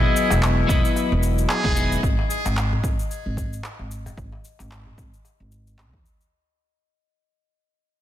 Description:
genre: organic downtempo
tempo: 112 BPM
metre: 4/4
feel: swing 57% on 16ths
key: G# minor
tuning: A4 = 440 Hz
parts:
  - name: trumpet with metal mute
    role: melody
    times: 0.0-2.0 s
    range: E4 to G#4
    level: -27 LUFS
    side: right 1 dB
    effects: digital delay
  - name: twelve-string electric guitar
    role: accompaniment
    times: 0.0-2.0 s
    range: F#3 to D#5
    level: -25 LUFS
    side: left 2 dB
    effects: sidechain pumping, tape echo
  - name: darbuka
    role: percussion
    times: 0.0-6.0 s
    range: none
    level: -34 LUFS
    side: left 3 dB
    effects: none
  - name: bronze singing bowl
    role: texture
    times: 0.0-6.3 s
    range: D#5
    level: -32 LUFS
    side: left 13 dB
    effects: none
  - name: electronic cabasa and handclaps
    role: drums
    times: 0.2-6.3 s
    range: none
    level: -30 LUFS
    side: equal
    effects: overdrive, studio reverb
  - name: upright bass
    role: bass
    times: 0.3-6.0 s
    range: E1 to D#2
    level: -24 LUFS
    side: equal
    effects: sidechain pumping
  - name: electronic kick drum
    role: drums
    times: 0.7-6.0 s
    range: none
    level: -24 LUFS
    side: equal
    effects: overdrive, studio reverb
room: light reverb, studio ambience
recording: dense, heavily limited modern master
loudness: -19 LUFS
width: side -12 dB against mid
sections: 0.0-6.3 A section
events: fade-out 0.0-6.3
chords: 0.0 Emaj7; 2.0 G#5

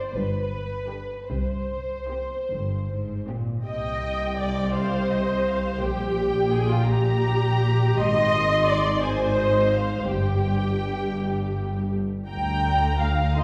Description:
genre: classical, slow romantic movement for string orchestra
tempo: 50-58 BPM (dotted quarters)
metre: 6/8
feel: rubato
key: C minor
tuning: A4 = 440 Hz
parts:
  - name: muted studio violin section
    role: melody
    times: 0.0-13.4 s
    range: G4 to C6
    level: -35 LUFS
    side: equal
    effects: none
  - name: muted studio violin section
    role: second line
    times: 0.0-13.4 s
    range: F4 to G5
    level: -31 LUFS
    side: equal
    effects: none
  - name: muted symphonic viola section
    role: accompaniment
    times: 0.0-13.4 s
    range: D3 to G5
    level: -29 LUFS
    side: equal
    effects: none
  - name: muted studio cello section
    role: bass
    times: 0.1-13.4 s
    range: G2 to Eb3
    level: -30 LUFS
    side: equal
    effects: none
  - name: muted studio double bass section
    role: bass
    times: 0.1-13.4 s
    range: G1 to Eb2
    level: -30 LUFS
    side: equal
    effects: none
room: wet concert hall reverb, RT60 1.9 s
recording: heard from further back in the room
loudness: -24 LUFS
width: mono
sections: 0.0-3.7 A section; 3.7-13.4 A section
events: none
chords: 0.1 G; 1.3 Cm; 5.8 Gm/Bb; 8.0 Ab; 10.1 N.C.; 12.3 Bb/D

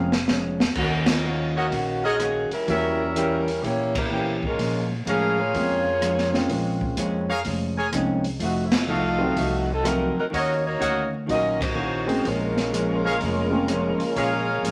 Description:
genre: jazz, big band swing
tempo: 126 BPM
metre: 4/4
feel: swing 66% on 8ths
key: Bb minor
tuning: A4 = 441 Hz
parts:
  - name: vintage hollow-body jazz guitar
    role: accompaniment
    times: 0.0-14.7 s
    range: Bb2 to G4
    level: -31 LUFS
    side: equal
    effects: none
  - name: warm grand piano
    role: accompaniment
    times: 0.0-13.7 s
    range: Gb3 to Ab4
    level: -29 LUFS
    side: equal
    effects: none
  - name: brilliant trumpet section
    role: stabs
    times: 0.0-14.7 s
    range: Gb4 to Ab5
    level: -29 LUFS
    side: equal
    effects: none
  - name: upright bass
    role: bass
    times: 0.0-14.7 s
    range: F1 to Bb2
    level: -33 LUFS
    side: equal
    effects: none
  - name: open jazz drum kit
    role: drums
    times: 0.1-14.7 s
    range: crash cymbal, hi-hat, kick drum, ride cymbal, rim click, snare drum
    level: -30 LUFS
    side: equal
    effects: none
  - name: mellow saxophone section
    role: melody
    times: 0.8-14.7 s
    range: Eb3 to Eb5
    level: -28 LUFS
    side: equal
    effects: none
  - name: warm trombone section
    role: second line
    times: 12.3-14.7 s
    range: Db3 to Bb3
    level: -33 LUFS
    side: equal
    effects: none
room: moderate studio reverb, RT60 0.7 s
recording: vinyl crackle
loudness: -24 LUFS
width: mono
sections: 0.0-14.7 A section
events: drum fill 0.0-0.8; band accent 1.0, 3.9, 8.7, 11.5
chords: 0.0 Bbm7; 0.8 Ebm7; 2.7 Edim7; 4.6 Bbm7; 8.4 F7b9; 10.3 Ebm7; 12.2 Bbm7

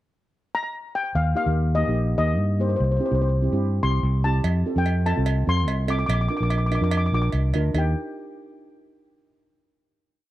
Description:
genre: calypso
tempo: 145 BPM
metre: 4/4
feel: straight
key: Eb major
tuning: A4 = 443 Hz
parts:
  - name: steel pan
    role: melody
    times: 0.5-8.0 s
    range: C5 to D6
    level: -27 LUFS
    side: left 3 dB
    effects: slapback echo
  - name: fingered electric bass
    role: bass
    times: 1.1-7.9 s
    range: Bb1 to G2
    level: -22 LUFS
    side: equal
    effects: none
  - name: steel pan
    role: accompaniment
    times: 1.3-7.9 s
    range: Bb3 to Bb4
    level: -28 LUFS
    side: right 2 dB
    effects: none
  - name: cowbell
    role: percussion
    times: 4.4-7.9 s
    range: none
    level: -33 LUFS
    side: right 8 dB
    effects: none
room: little or no reverb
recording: dry, close 1970s-style studio recording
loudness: -20 LUFS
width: side -15 dB against mid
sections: 0.0-1.1 pickup bar; 1.1-7.7 verse; 7.7-9.4 final chord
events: none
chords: 0.0 N.C.; 1.1 Ebadd9; 2.8 C; 4.4 F; 6.1 Bb; 7.7 Eb

